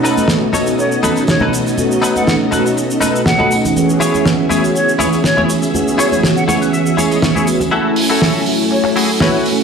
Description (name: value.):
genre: nu-disco, nu disco.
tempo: 121 BPM.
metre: 4/4.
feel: swing 53% on 16ths.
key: F# dorian.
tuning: A4 = 441 Hz.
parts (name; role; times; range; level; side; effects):
mellow synth brass; accompaniment; 0.0-9.6 s; B2 to G#5; -16 LUFS; right 1 dB; chorus, slapback echo.
string machine, full ensemble; sustained chords; 0.0-9.6 s; A3 to E5; -21 LUFS; equal; ensemble chorus.
direct-recorded clean electric guitar; riff; 0.0-9.5 s; D#4 to G#5; -19 LUFS; left 3 dB; ensemble chorus, low-pass filter, slapback echo.
tambourine and congas; percussion; 0.0-7.7 s; none; -23 LUFS; right 2 dB; none.
damped 70s drum kit; drums; 0.1-9.6 s; hi-hat, shaker, snare drum; -19 LUFS; right 1 dB; studio reverb.
bright silver concert flute; melody; 0.8-9.4 s; C#5 to F#5; -20 LUFS; left 1 dB; low-pass filter, tape echo.
room: moderate plate reverb, RT60 1.9 s, studio reverb.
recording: played on a big sound system in a bare room, large studio reverb.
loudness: -12 LUFS.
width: side -6 dB against mid.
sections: 0.0-7.7 A section; 7.7-9.6 B section.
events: clean electric guitar fill 6.2-7.7; build-up 7.7-9.6; filter sweep on flute 7.7-9.6.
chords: 0.0 B7; 3.8 E6; 7.7 F#m7.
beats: 0.29 0.78 1.28 | 1.77 2.27 2.77 3.26 | 3.76 4.25 4.75 5.25 | 5.74 6.24 6.73 7.23 | 7.72 8.22 8.72 9.21.